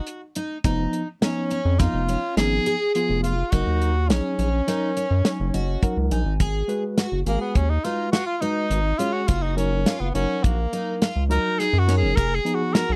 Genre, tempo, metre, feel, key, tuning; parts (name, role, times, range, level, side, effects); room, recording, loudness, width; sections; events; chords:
progressive instrumental, band music in an uneven meter; 104 BPM; 5/4; straight; A4 = 438 Hz
clear tenor saxophone; melody; 0.0-13.0 s; Bb3 to Bb4; -28 LUFS; equal
picked twelve-string acoustic guitar; arpeggios; 0.0-13.0 s; Db4 to Ab4; -33 LUFS; equal
warm soul drum kit; drums; 0.1-12.9 s; hi-hat, kick drum, snare drum; -25 LUFS; equal
tine electric piano; accompaniment; 0.6-12.8 s; F3 to Ab5; -30 LUFS; equal; overdrive
round analog bass; bass; 0.6-13.0 s; F1 to Gb2; -25 LUFS; equal
little or no reverb; dry, close 1970s-style studio recording; -23 LUFS; mono
0.0-6.4 A section; 6.4-13.0 B section
tine electric piano fill 5.3-6.4; tenor saxophone solo 6.4-13.0
0.0 Gb5; 0.6 Db7/F; 3.5 Gb6; 6.4 Abm7; 9.3 Gb6; 12.2 Db7/F (rootless)